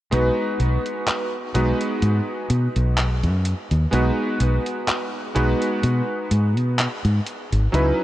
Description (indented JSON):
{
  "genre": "vaporwave",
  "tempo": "63 BPM",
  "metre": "4/4",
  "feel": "swing 55% on 16ths",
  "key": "B major",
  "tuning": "A4 = 441 Hz",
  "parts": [
    { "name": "bright electric grand piano", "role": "accompaniment", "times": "0.1-8.0 s", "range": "F#3 to B4", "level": "-24 LUFS", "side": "right 1 dB", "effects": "analog chorus, tape echo" },
    { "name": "fingered electric bass", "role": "bass", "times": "0.1-7.9 s", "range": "G#1 to B2", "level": "-19 LUFS", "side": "equal", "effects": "none" },
    { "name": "detuned 8-bit digital drum machine", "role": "drums", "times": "0.1-7.9 s", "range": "handclaps, hi-hat", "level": "-28 LUFS", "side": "equal", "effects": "vintage 12-bit sampler grit" }
  ],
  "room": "moderate huge ambient reverb, RT60 6.0 s",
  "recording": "dreamy mix soaked in reverb, cassette tape",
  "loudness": "-19 LUFS",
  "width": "side -14 dB against mid",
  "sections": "0.1-8.0 A section",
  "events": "none",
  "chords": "0.1 B6"
}